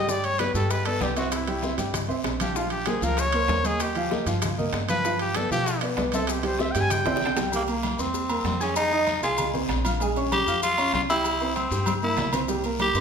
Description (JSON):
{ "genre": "latin, salsa", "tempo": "193 BPM", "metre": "4/4", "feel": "straight", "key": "unclear", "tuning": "A4 = 439 Hz", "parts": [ { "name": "clear trumpet", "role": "melody", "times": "0.0-7.5 s", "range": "E4 to Ab5", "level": "-28 LUFS", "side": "equal", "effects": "none" }, { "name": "warm upright piano", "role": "accompaniment", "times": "0.0-13.0 s", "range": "F3 to Ab6", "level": "-28 LUFS", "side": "right 3 dB", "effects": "none" }, { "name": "upright bass", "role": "bass", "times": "0.0-13.0 s", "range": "Bb1 to B2", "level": "-31 LUFS", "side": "left 1 dB", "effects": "none" }, { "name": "bongos and cowbell", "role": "percussion", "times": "0.1-13.0 s", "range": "none", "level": "-36 LUFS", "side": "left 6 dB", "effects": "none" }, { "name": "congas", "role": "percussion", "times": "0.1-13.0 s", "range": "none", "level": "-35 LUFS", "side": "left 2 dB", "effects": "none" }, { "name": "guiro", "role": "percussion", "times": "0.1-13.0 s", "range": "none", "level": "-40 LUFS", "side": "left 5 dB", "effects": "none" }, { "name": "maracas", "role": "percussion", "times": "0.1-13.0 s", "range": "none", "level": "-38 LUFS", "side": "left 6 dB", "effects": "none" }, { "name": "timbales and agogo bells", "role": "percussion", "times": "0.2-13.0 s", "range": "none", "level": "-33 LUFS", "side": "right 3 dB", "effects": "none" }, { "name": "growling tenor saxophone", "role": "melody", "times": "7.6-13.0 s", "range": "Bb3 to G4", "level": "-25 LUFS", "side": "left 1 dB", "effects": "none" } ], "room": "moderate recital hall reverb, RT60 1.5 s", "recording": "recorded in a church or concert hall", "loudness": "-22 LUFS", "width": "side -6 dB against mid", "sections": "0.0-7.5 A section; 7.5-13.0 B section", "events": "trumpet solo 0.0-7.5; drum fill 7.1-7.5, 11.9-12.5", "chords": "0.1 G; 1.3 C; 2.6 Bbmadd9; 3.8 Ebadd9; 5.0 G7; 6.3 C; 7.5 C7; 8.8 Fm7; 10.0 Bbm7; 11.2 C7" }